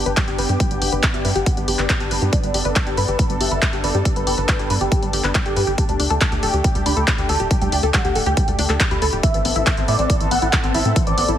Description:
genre	uplifting trance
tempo	139 BPM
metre	4/4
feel	straight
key	G major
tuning	A4 = 441 Hz
part	big supersaw lead	melody	0.0-11.3 s	G4 to B5	-25 LUFS	right 1 dB	phaser, cassette tape, sidechain pumping, low-pass filter, ping-pong delay
part	lush unison pad	sustained chords	0.0-11.4 s	A3 to A4	-26 LUFS	equal	chorus, sidechain pumping
part	tight sequenced synth	arpeggios	0.0-11.3 s	E3 to B4	-25 LUFS	left 1 dB	chorus, phaser, cassette tape, sidechain pumping, ping-pong delay
part	tight sequencer bass	bass	0.0-11.4 s	D1 to A2	-23 LUFS	equal	sidechain pumping
part	big-room dance drum kit	drums	0.1-11.4 s	handclaps, hi-hat	-23 LUFS	left 1 dB	sidechain pumping on hats, sidechain pumping on cymbals
part	electronic kick drum	drums	0.2-11.0 s	none	-20 LUFS	equal	none
room	light reverb, digital ambience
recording	heavily compressed radio sound, multiband compression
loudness	-16 LUFS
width	side -10 dB against mid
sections	0.0-11.4 A section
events	none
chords	0.0 G; 5.8 Dsus4; 9.2 Amadd9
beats	0.17 | 0.60 1.03 1.46 1.90 | 2.33 2.76 3.19 3.62 | 4.05 4.49 4.92 5.35 | 5.78 6.21 6.64 7.08 | 7.51 7.94 8.37 8.80 | 9.23 9.67 10.10 10.53 | 10.96

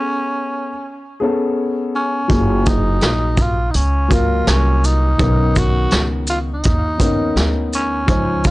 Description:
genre	hip hop, jazz-hop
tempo	83 BPM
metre	4/4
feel	swing 65% on 16ths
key	unclear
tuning	A4 = 441 Hz
part	growling tenor saxophone	melody	0.0-8.5 s	C#4 to F#4	-21 LUFS	equal	tape echo
part	dark grand piano	accompaniment	0.0-8.5 s	C#3 to B#4	-21 LUFS	left 2 dB	none
part	upright bass	bass	2.3-8.5 s	F#1 to D#2	-18 LUFS	equal	none
part	vintage brush drum kit	drums	2.3-8.5 s	hi-hat, kick drum, shaker, snare drum	-18 LUFS	equal	none
room	little or no reverb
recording	dry, gritty hardware recording, transformer saturation, nothing above 10.3 kHz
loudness	-14 LUFS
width	side -19 dB against mid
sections	0.0-8.5 A section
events	none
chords	0.0 Amaj9; 2.3 F#maj9; 5.2 Bmaj9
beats	0.13 0.85 1.57 | 2.29 3.02 3.74 4.46 | 5.19 5.91 6.63 7.36 | 8.08

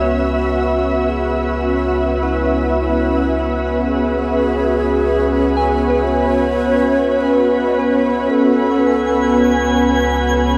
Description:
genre	ambient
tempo	54 BPM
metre	4/4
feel	straight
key	C# minor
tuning	A4 = 435 Hz
part	breathy wooden-headed alto flute	melody	0.0-10.6 s	E4 to D#5	-24 LUFS	equal	diffuse ambient delay
part	ethereal airy pad	sustained chords	0.0-10.6 s	B3 to E5	-18 LUFS	equal	ensemble chorus, built-in reverb
part	soft synth bell	arpeggios	0.0-10.6 s	B4 to G#5	-30 LUFS	equal	none
part	round analog bass	bass	0.0-10.6 s	C#2	-27 LUFS	equal	none
part	twinkling granular texture	texture	8.7-10.6 s	G#5 to G#6	-25 LUFS	equal	built-in reverb
room	wet shimmer reverb, RT60 8.1 s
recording	dark, warm production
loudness	-16 LUFS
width	mono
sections	0.0-10.6 A section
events	none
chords	0.0 C#m7; 8.3 G#m7/C#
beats	0.56 1.67 2.78 | 3.89 5.00 6.11 7.22 | 8.33 9.44 10.56

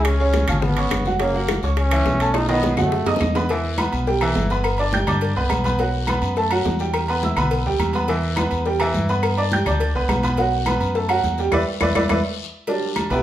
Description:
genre	latin, salsa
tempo	209 BPM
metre	4/4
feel	straight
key	E minor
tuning	A4 = 440 Hz
part	bright trombone	melody	0.0-3.3 s	A3 to D#4	-24 LUFS	left 1 dB	none
part	bright upright piano	accompaniment	0.0-13.2 s	C#3 to G6	-22 LUFS	right 2 dB	none
part	fingered electric bass	bass	0.0-13.2 s	F#1 to G2	-23 LUFS	equal	none
part	claves	percussion	0.0-13.1 s	none	-32 LUFS	left 7 dB	none
part	timbales and agogo bells	percussion	0.0-13.2 s	none	-28 LUFS	right 3 dB	none
part	bongos and cowbell	percussion	0.1-13.1 s	none	-29 LUFS	left 5 dB	none
part	congas	percussion	0.1-13.2 s	none	-27 LUFS	left 1 dB	none
part	guiro	percussion	0.1-13.2 s	none	-36 LUFS	left 8 dB	none
room	wet large studio reverb, RT60 0.8 s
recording	band playing live in one room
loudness	-18 LUFS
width	side -12 dB against mid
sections	0.0-3.5 A section; 3.5-12.7 B section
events	drum fill 2.3-3.5; band accent 11.5-12.7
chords	0.0 C#7; 1.2 F#7; 2.3 B7; 3.5 Em; 4.6 G; 5.8 B5; 6.9 Em; 9.2 G; 10.4 B5; 11.5 E5; 12.7 Em7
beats	| 0.05 0.34 0.62 0.91 | 1.20 1.49 1.77 2.06 | 2.35 2.63 2.92 3.21 | 3.50 3.78 4.07 4.36 | 4.64 4.93 5.22 5.50 | 5.79 6.08 6.37 6.65 | 6.94 7.22 7.51 7.80 | 8.08 8.37 8.66 8.94 | 9.23 9.52 9.80 10.09 | 10.38 10.66 10.95 11.24 | 11.53 11.81 12.10 12.39 | 12.67 12.96

